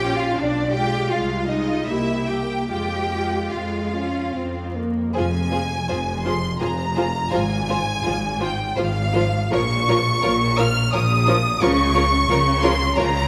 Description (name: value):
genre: classical, slow romantic movement for string orchestra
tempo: 70-90 BPM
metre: 3/4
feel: rubato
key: F minor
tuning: A4 = 440 Hz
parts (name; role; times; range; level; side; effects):
- rich studio violin section; melody; 0.0-13.3 s; D5 to F6; -26 LUFS; equal; none
- clear studio violin section; second line; 0.0-13.0 s; F4 to G5; -30 LUFS; equal; none
- rich studio viola section; accompaniment; 0.0-13.1 s; F3 to G4; -28 LUFS; equal; none
- clear studio cello section; bass; 0.0-13.3 s; F2 to G4; -28 LUFS; equal; none
- clear studio double bass section; bass; 0.0-13.3 s; F1 to F2; -28 LUFS; equal; none
room: wet concert hall reverb, RT60 1.9 s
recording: vinyl crackle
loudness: -21 LUFS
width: mono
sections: 0.0-5.2 A section; 5.2-13.3 B section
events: none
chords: 0.4 Bdim7; 1.1 Fm/C; 1.9 C7; 2.7 Fm; 7.3 Fm/Ab; 9.5 Bbm; 11.6 Bbm/Db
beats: | 0.36 1.11 1.87 | 2.70 3.53 4.34 | 5.15 5.88 6.61 | 7.33 8.05 8.76 | 9.52 10.24 10.93 | 11.61 12.30 12.97